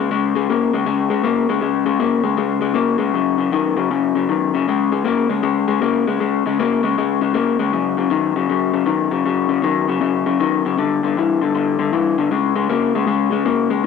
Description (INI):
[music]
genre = blues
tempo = 157 BPM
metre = 4/4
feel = swing 64% on 8ths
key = unclear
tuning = A4 = 440 Hz
[part]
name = electric guitar through a small old amp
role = solo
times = 0.0-13.9 s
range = Gb2 to Bb3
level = -16 LUFS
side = left 7 dB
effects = none
[sound]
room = moderate echo chamber reverb, RT60 2.2 s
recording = none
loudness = -16 LUFS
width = side -5 dB against mid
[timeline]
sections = 0.0-1.6 A section; 1.6-13.9 B section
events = none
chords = 0.0 Db5; 3.1 Gb5; 4.7 Db5; 7.7 Gb5; 10.8 G5; 12.3 Db5